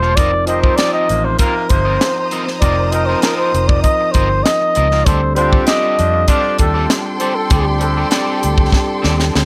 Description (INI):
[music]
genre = lush 1970s-style soul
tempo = 98 BPM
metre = 4/4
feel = straight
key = unclear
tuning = A4 = 439 Hz
[part]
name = breathy flugelhorn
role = melody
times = 0.0-9.3 s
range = G4 to Eb5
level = -20 LUFS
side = equal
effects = none
[part]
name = warm studio violin section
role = second line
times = 0.0-9.4 s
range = F4 to Eb6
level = -28 LUFS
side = equal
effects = none
[part]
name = barky tine electric piano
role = accompaniment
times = 0.0-9.4 s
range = F3 to A5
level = -24 LUFS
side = equal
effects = overdrive
[part]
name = electric guitar at the edge of break-up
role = riff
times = 0.0-9.4 s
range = Bb3 to F5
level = -27 LUFS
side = equal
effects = none
[part]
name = vintage muted fingered electric bass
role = bass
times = 0.0-9.4 s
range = E1 to F2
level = -20 LUFS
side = equal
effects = none
[part]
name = tight funk drum kit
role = drums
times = 0.0-9.4 s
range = hi-hat, kick drum, rim click, snare drum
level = -18 LUFS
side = equal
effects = none
[part]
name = clear horn section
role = stabs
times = 0.5-7.2 s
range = A2 to G4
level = -27 LUFS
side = equal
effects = none
[sound]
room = small room ambience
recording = none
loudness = -15 LUFS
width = mono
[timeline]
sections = 0.0-9.4 A section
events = drum fill 8.7-9.4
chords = 0.2 F7sus4; 5.1 D7sus4